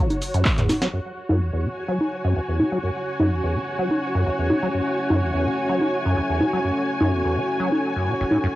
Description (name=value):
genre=acid house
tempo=126 BPM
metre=4/4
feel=straight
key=F# minor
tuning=A4 = 442 Hz
part: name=liquid acid bass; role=riff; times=0.0-8.5 s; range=F#1 to F#3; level=-24 LUFS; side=equal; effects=tube saturation, wide subtle chorus, sidechain pumping, cassette tape, tape echo
part: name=muted studio string section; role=texture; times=0.0-8.6 s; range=F#4 to G#5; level=-26 LUFS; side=equal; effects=sidechain pumping, cassette tape
part: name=booming analog drum machine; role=drums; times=0.1-8.4 s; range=congas, crash cymbal, handclaps, hi-hat, shaker, snare drum, toms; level=-22 LUFS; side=equal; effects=low-pass filter on hats, cassette tape, low-pass filter on perc, low-pass filter on snare, low-pass filter on toms, low-pass filter on cymbals
part: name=electronic kick drum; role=drums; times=0.5-0.6 s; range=none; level=-22 LUFS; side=equal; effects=cassette tape
part: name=dark analog pad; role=sustained chords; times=2.8-8.6 s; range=C#4 to E5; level=-28 LUFS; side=left 1 dB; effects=chorus, sidechain pumping, cassette tape
room=moderate studio reverb, RT60 0.5 s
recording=home recording on cassette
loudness=-20 LUFS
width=side -16 dB against mid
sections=0.9-8.6 A section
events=drum fill 0.7; filter sweep on acid bass 0.9-8.6; filter sweep on analog synth pad 0.9-8.6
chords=0.0 F#7(no3); 0.9 F#m7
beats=0.45 | 0.93 1.41 1.88 2.36 | 2.83 3.31 3.79 4.26 | 4.74 5.21 5.69 6.17 | 6.64 7.12 7.60 8.07 | 8.55